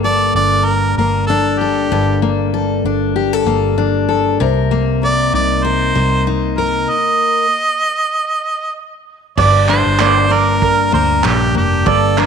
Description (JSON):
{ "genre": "acoustic pop", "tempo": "96 BPM", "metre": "4/4", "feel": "swing 55% on 16ths", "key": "G minor", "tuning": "A4 = 440 Hz", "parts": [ { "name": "clear harmonica", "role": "melody", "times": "0.0-12.3 s", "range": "G4 to Eb5", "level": "-16 LUFS", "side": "right 2 dB", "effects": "tape echo" }, { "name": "picked steel-string acoustic guitar", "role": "accompaniment", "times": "0.0-12.3 s", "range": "G2 to Bb4", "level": "-16 LUFS", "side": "left 5 dB", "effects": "none" }, { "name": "vintage muted fingered electric bass", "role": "bass", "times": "0.0-12.3 s", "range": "F1 to D2", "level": "-19 LUFS", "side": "right 2 dB", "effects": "none" }, { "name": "mandolin", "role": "arpeggios", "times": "9.4-12.2 s", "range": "Bb4 to D5", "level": "-16 LUFS", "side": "right 11 dB", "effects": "none" }, { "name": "cloth-damped thuddy drum kit", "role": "drums", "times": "9.4-12.3 s", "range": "crash cymbal, handclaps, kick drum", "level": "-20 LUFS", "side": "right 7 dB", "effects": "none" } ], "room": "light reverb, studio ambience", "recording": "1960s-style stereo", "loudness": "-12 LUFS", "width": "side -6 dB against mid", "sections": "0.0-9.4 A section; 9.4-12.3 B section", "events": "stop 6.9-9.4", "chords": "0.0 Gmadd9; 4.4 Cm7; 9.4 Gm" }